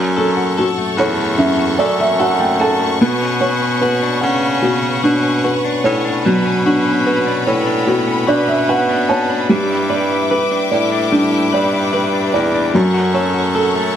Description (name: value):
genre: pop ballad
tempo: 74 BPM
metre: 4/4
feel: straight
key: B minor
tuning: A4 = 439 Hz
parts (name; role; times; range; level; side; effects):
- felt-muted upright piano; accompaniment; 0.0-14.0 s; F#3 to A5; -17 LUFS; right 1 dB; none
- clear symphonic string section; sustained chords; 0.0-14.0 s; A4 to D6; -22 LUFS; left 1 dB; none
- direct-recorded clean electric guitar; arpeggios; 0.0-14.0 s; F#2 to B4; -21 LUFS; left 6 dB; none
- clear baritone saxophone; bass; 0.0-13.9 s; E2 to C#3; -19 LUFS; equal; none
room: moderate recital hall reverb, RT60 1.5 s, studio reverb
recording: none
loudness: -13 LUFS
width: side -9 dB against mid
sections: 0.0-14.0 A section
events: felt piano fill 0.6-3.0, 7.9-9.5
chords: 0.0 F#m; 3.0 Bmadd9; 9.5 G6; 12.7 F#m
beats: 0.58 1.39 2.20 | 3.02 3.83 4.64 5.45 | 6.26 7.07 7.88 8.69 | 9.50 10.31 11.12 11.93 | 12.74 13.55